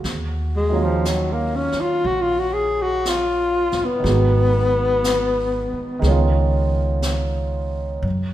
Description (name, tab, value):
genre	jazz ballad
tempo	60 BPM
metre	4/4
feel	swing 68% on 8ths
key	unclear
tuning	A4 = 440 Hz
part	warm concert grand piano	accompaniment	0.0-8.1 s	Eb3 to Gb4	-25 LUFS	right 4 dB	none
part	upright bass	bass	0.0-8.3 s	G1 to Gb2	-22 LUFS	equal	none
part	jazz brush drum kit	drums	0.0-8.3 s	brushed snare drum, hi-hat, snare drum	-30 LUFS	left 2 dB	none
part	breathy tenor saxophone	melody	0.6-6.4 s	F3 to Ab4	-20 LUFS	left 2 dB	none
room	wet recital hall reverb, RT60 1.4 s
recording	recorded in a church or concert hall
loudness	-18 LUFS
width	side -13 dB against mid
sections	0.0-8.3 A section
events	tenor saxophone solo 0.0-8.3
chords	0.0 Ebm9; 4.0 Abm7; 6.0 Db9